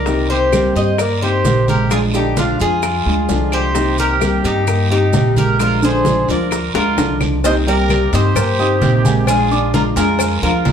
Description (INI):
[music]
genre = latin, Cuban son and guajira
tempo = 130 BPM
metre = 4/4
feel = straight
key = C minor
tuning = A4 = 440 Hz
[part]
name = Cuban tres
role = melody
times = 0.0-10.7 s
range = F4 to Eb5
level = -19 LUFS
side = left 1 dB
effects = plate reverb
[part]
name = growling trumpet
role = second line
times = 0.0-10.7 s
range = D4 to C5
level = -24 LUFS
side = right 4 dB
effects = none
[part]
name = nylon-string guitar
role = accompaniment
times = 0.0-10.7 s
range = C3 to G4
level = -21 LUFS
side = left 3 dB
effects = none
[part]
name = upright bass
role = bass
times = 0.0-10.7 s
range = Bb1 to G2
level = -19 LUFS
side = right 1 dB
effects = none
[part]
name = dark grand piano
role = arpeggios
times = 0.1-10.7 s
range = D3 to Eb6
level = -21 LUFS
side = right 1 dB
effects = none
[part]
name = bongos and cowbell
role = percussion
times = 0.1-10.7 s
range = none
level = -26 LUFS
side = left 4 dB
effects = none
[part]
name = congas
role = percussion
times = 0.1-10.7 s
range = none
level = -22 LUFS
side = right 1 dB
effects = none
[part]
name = guiro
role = percussion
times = 0.1-10.7 s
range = none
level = -30 LUFS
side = right 4 dB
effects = none
[part]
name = maracas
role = percussion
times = 0.1-10.7 s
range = none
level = -30 LUFS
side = right 6 dB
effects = none
[part]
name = claves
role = percussion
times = 0.5-10.4 s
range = none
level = -28 LUFS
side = left 2 dB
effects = none
[sound]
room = wet studio reverb, RT60 0.7 s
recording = heard from further back in the room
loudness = -13 LUFS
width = side -8 dB against mid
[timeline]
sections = 0.0-7.4 A section; 7.4-10.7 B section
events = drum fill 6.7-7.4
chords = 0.1 Cm7; 1.9 Bb7; 3.8 Cm7; 5.6 Bb7; 7.4 Cm7; 9.3 Bb7